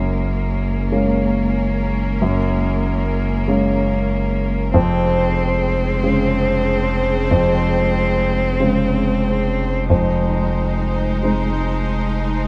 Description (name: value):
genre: neoclassical piano and strings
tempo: 47 BPM (dotted quarters)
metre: 6/8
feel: rubato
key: unclear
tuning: A4 = 440 Hz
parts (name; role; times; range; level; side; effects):
- clear cello; second line; 0.0-12.5 s; Ab3 to C4; -26 LUFS; equal; none
- warm grand piano; accompaniment; 0.0-12.5 s; F2 to Eb4; -22 LUFS; equal; none
- rich symphonic string section; sustained chords; 0.0-12.5 s; Db3 to C5; -30 LUFS; equal; none
- saturated sub bass; bass; 0.0-12.5 s; F1 to Gb1; -25 LUFS; equal; none
room: light reverb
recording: none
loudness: -19 LUFS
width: mono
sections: 0.0-12.5 A section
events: none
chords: 0.0 Gbadd9; 4.8 Dbmaj7/F; 9.9 Fm7